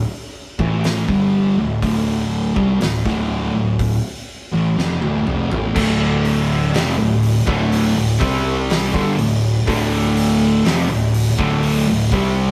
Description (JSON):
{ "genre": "stoner and doom metal", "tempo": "61 BPM", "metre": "4/4", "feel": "straight", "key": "D minor", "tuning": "A4 = 440 Hz", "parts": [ { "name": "fuzz picked electric bass", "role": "bass", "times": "0.0-12.5 s", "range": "D1 to C2", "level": "-28 LUFS", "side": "equal", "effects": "overdrive, tube saturation" }, { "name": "thick fuzz guitar", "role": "riff", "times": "0.6-12.5 s", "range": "D2 to C4", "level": "-21 LUFS", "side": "equal", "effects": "distortion" }, { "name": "thick fuzz guitar", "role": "riff", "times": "0.6-12.5 s", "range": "D2 to C4", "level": "-27 LUFS", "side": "equal", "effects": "distortion" }, { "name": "oversized low-tuned drum kit", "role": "drums", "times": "0.6-12.3 s", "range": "crash cymbal, hi-hat, kick drum, snare drum, toms", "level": "-26 LUFS", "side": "equal", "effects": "none" }, { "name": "cranked stack guitar", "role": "riff", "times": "5.8-12.5 s", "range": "D2 to C4", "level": "-22 LUFS", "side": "equal", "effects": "overdrive" } ], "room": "light reverb", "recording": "rough rehearsal-room recording", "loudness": "-18 LUFS", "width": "mono", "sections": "0.0-5.8 A section; 5.8-12.5 B section", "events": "drum fill 4.8-5.8", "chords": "0.0 Dm" }